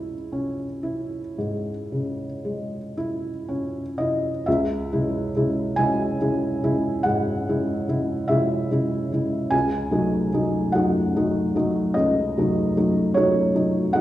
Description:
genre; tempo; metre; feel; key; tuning
classical, romantic nocturne for solo piano; 37-52 BPM (dotted quarters); 12/8; rubato; C# minor; A4 = 440 Hz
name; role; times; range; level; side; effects
felt-muted upright piano; solo; 0.0-14.0 s; C#2 to G#5; -21 LUFS; equal; none
room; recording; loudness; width
wet recital hall reverb, RT60 1.4 s; heard from further back in the room; -21 LUFS; side -14 dB against mid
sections
0.0-4.5 A section; 4.5-14.0 B section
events
none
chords
0.0 C#m; 9.5 D#m7b5/C#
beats
1.41 2.97 | 4.47 5.78 7.05 8.30 | 9.53 10.75 11.98 13.17

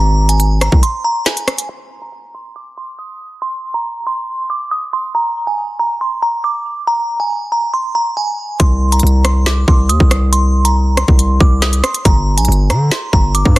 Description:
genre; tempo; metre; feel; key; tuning
hip hop, drill; 139 BPM; 4/4; half-time; unclear; A4 = 441 Hz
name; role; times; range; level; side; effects
glassy synth bell; melody; 0.0-13.5 s; Ab5 to Eb6; -18 LUFS; right 2 dB; chorus, tremolo, low-pass filter
distorted 808-style bass; bass; 0.0-0.8, 8.6-13.6 s; G1 to D3; -12 LUFS; equal; distortion
drill drum kit; drums; 0.3-1.7, 8.6-13.6 s; hi-hat, kick drum, rim click, snare drum; -13 LUFS; equal; soft clipping on snare
room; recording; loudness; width
little or no reverb; dense, heavily limited modern master; -12 LUFS; side -18 dB against mid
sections
0.0-1.7 A section; 1.7-8.6 B section; 8.6-13.6 A section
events
break 0.8-1.7; filter sweep on synth bell 1.7-8.6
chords
0.0 N.C.; 12.1 Gm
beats
0.40 0.83 1.26 | 1.69 2.12 2.56 2.99 | 3.42 3.85 4.28 4.71 | 5.15 5.58 6.01 6.44 | 6.87 7.30 7.74 8.17 | 8.60 9.03 9.46 9.89 | 10.33 10.76 11.19 11.62 | 12.05 12.48 12.92 13.35

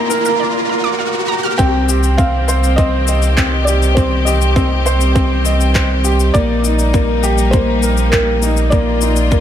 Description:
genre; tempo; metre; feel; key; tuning
piano and strings electronica; 101 BPM; 4/4; straight; C minor; A4 = 440 Hz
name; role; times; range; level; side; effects
felt-muted upright piano; melody; 0.0-9.4 s; Bb4 to Bb5; -22 LUFS; right 1 dB; digital delay, shimmer reverb
clear symphonic string section; sustained chords; 0.0-9.4 s; D3 to G4; -22 LUFS; left 3 dB; sidechain pumping, shimmer reverb
wide unison pluck; arpeggios; 0.0-1.5 s; Bb4 to F6; -24 LUFS; right 5 dB; sidechain pumping, digital delay, shimmer reverb
felt-muted upright piano; riff; 0.0-9.4 s; Bb3 to Eb5; -18 LUFS; equal; digital delay, shimmer reverb
warm sub bass; bass; 0.0-9.4 s; Bb1 to C2; -15 LUFS; equal; sidechain pumping, high-pass filter
riser; sound effects; 0.0-1.6 s; none; -21 LUFS; equal; none
electronic shaker and handclaps; drums; 0.1-9.4 s; none; -22 LUFS; left 4 dB; overdrive
electronic kick drum; drums; 1.6-9.4 s; none; -16 LUFS; equal; overdrive
room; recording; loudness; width
light reverb; none; -12 LUFS; side -10 dB against mid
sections
0.0-1.6 A section; 1.6-9.4 B section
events
build-up 0.0-1.6; riser 0.0-1.6; filter sweep on synth arpeggio sound 0.0-1.6; filter sweep on felt piano 0.0-1.6; break 0.4-1.6; drop 1.6-9.4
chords
0.0 Bb; 1.6 Cm; 6.3 Ebmaj7/Bb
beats
0.41 1.00 | 1.59 2.19 2.78 3.38 | 3.97 4.57 5.16 5.75 | 6.35 6.94 7.54 8.13 | 8.72 9.32

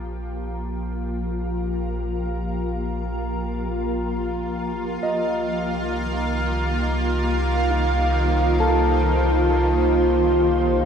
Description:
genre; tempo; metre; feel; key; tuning
ambient; free time; none; none; unclear; A4 = 443 Hz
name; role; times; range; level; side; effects
shimmering ambient pad; sustained chords; 0.0-10.9 s; Eb3 to C5; -22 LUFS; right 1 dB; chorus, built-in reverb
mellow electric guitar; arpeggios; 0.0-10.9 s; F4 to Bb5; -28 LUFS; left 2 dB; tape echo
warm sub bass; bass; 0.0-10.9 s; Bb1 to C2; -25 LUFS; equal; tube saturation
room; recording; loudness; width
wet cathedral reverb, RT60 6.7 s; none; -20 LUFS; side -7 dB against mid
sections
0.0-10.9 A section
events
fade-in on ambient pad 0.0-10.9; fade-in on clean electric guitar 0.0-10.9; fade-in on sub bass 0.0-10.9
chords
0.0 Bb5; 5.0 Cm7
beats
free time

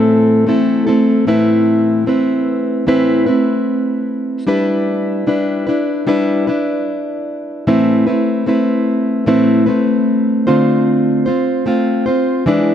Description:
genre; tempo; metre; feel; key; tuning
pop; 75 BPM; 4/4; straight; A minor; A4 = 440 Hz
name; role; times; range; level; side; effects
fingerpicked plugged-in steel-string acoustic guitar; solo; 0.0-12.7 s; A2 to C5; -12 LUFS; equal; none
room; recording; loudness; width
moderate lush hall reverb, RT60 2.7 s; dark, warm production; -12 LUFS; side -9 dB against mid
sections
0.0-1.3 A section; 1.3-12.7 B section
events
none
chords
0.0 Am; 1.3 Amadd9; 4.5 Em7/G; 7.7 Amadd9; 10.5 Dm7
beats
0.47 | 1.27 2.08 2.88 3.67 | 4.47 5.28 6.08 6.88 | 7.67 8.47 9.28 10.07 | 10.88 11.68 12.47

